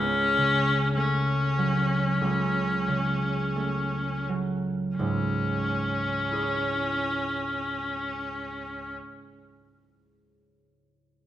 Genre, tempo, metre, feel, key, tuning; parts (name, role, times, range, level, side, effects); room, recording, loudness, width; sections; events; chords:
classical, romantic duo for viola and harp; 40-52 BPM; 4/4; rubato; C# minor; A4 = 440 Hz
clear viola; melody; 0.0-8.9 s; C#4; -27 LUFS; left 2 dB
concert harp; accompaniment; 0.0-10.3 s; C#2 to C#5; -28 LUFS; right 1 dB
wet recital hall reverb, RT60 1.7 s; -24 LUFS; side -12 dB against mid
0.0-5.0 A section; 5.0-10.1 B section
slowing down 0.0-5.0
0.0 F#m/C#; 5.0 C#m